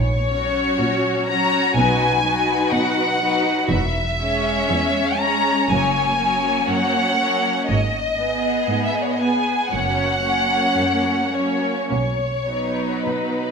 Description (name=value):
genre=classical, slow romantic movement for string orchestra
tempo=51-62 BPM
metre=4/4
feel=rubato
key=unclear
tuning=A4 = 441 Hz
part: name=warm symphonic violin section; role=melody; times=0.0-13.5 s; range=B4 to A#5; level=-21 LUFS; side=left 2 dB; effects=none
part: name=rich studio double bass section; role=bass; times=0.0-12.9 s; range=E1 to B1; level=-26 LUFS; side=right 2 dB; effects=none
part: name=rich symphonic cello section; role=bass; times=0.0-13.5 s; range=E2 to B2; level=-28 LUFS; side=right 2 dB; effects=none
part: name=rich symphonic violin section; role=second line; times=0.3-13.5 s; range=B3 to C#5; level=-24 LUFS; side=left 1 dB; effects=none
part: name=warm studio viola section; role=accompaniment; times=0.3-13.5 s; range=F#3 to D#4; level=-25 LUFS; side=right 1 dB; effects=none
room=wet recital hall reverb, RT60 1.5 s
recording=none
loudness=-17 LUFS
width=side -5 dB against mid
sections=0.0-13.5 A section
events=none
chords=0.0 F#/A#; 1.8 B; 3.7 C#m/E; 5.7 F#; 7.7 G#m; 9.7 F#; 11.9 B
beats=0.80 1.77 2.74 | 3.71 4.70 5.70 6.68 | 7.69 8.71 9.72 10.78 | 11.91 13.06